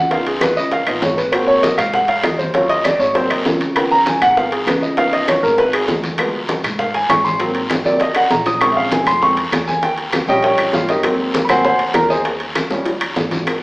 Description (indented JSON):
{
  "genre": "Afro-Cuban jazz",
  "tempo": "198 BPM",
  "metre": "4/4",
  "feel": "straight",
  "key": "Ab mixolydian",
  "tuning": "A4 = 437 Hz",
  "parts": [
    { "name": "warm baby grand piano", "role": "accompaniment", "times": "0.0-12.9 s", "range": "Db3 to Eb6", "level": "-15 LUFS", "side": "equal", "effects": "none" },
    { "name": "upright bass", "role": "bass", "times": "0.0-13.6 s", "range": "Ab1 to Ab2", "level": "-27 LUFS", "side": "equal", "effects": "none" },
    { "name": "bongos", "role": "percussion", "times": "0.1-13.6 s", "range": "none", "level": "-24 LUFS", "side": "left 1 dB", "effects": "none" },
    { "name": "congas", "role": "percussion", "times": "0.1-13.6 s", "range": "none", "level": "-26 LUFS", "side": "equal", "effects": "none" },
    { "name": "guiro", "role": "percussion", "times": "0.1-13.6 s", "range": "none", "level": "-28 LUFS", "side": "left 1 dB", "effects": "none" },
    { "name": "timbales", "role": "percussion", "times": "0.1-13.6 s", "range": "none", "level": "-24 LUFS", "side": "right 1 dB", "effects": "none" },
    { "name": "claves", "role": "percussion", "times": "0.4-13.6 s", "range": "none", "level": "-27 LUFS", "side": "equal", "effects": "none" }
  ],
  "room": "wet large studio reverb, RT60 1.1 s",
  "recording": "heard from further back in the room, small speaker sound",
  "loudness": "-14 LUFS",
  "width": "side -23 dB against mid",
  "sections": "0.0-13.5 A section",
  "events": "grand piano solo 0.0-13.5; drum fill 8.2-8.6, 12.6-13.5",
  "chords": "0.1 Db7; 1.3 Ab7; 2.5 Ebm7; 3.2 Ab7; 3.8 Db7; 6.2 Ddim7; 7.4 Ab7; 8.6 Bbm7; 9.8 Eb7; 11.0 Ab7; 12.3 Eb7",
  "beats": "| 0.12 0.42 0.72 1.03 | 1.33 1.64 1.94 2.24 | 2.55 2.85 3.15 3.46 | 3.76 4.07 4.37 4.67 | 4.97 5.28 5.58 5.88 | 6.19 6.49 6.79 7.10 | 7.40 7.70 8.01 8.31 | 8.61 8.91 9.22 9.52 | 9.82 10.13 10.43 10.73 | 11.04 11.34 11.65 11.95 | 12.25 12.56 12.86 13.17 | 13.47"
}